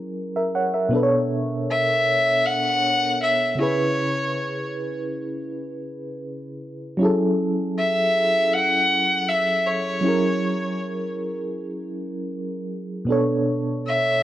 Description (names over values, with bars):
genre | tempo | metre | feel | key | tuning
R&B | 79 BPM | 4/4 | straight | F# minor | A4 = 439 Hz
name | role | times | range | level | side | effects
mellow FM electric piano | accompaniment | 0.0-14.2 s | B2 to F#5 | -23 LUFS | equal | chorus, tremolo
clear fiddle | melody | 1.7-14.2 s | C#5 to F#5 | -20 LUFS | equal | digital delay
room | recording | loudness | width
light reverb, studio ambience | worn, warbling old tape, cassette tape, warbly pitch drift | -20 LUFS | side -13 dB against mid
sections
0.0-14.2 A section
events
none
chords
0.0 F#7; 0.9 Bm9; 3.6 C#m7; 7.0 F#m7; 10.0 F#7; 13.1 Bm9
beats
0.17 | 0.93 1.69 2.44 3.20 | 3.96 4.72 5.48 6.24 | 7.00 7.76 8.52 9.28 | 10.04 10.80 11.56 12.32 | 13.08 13.84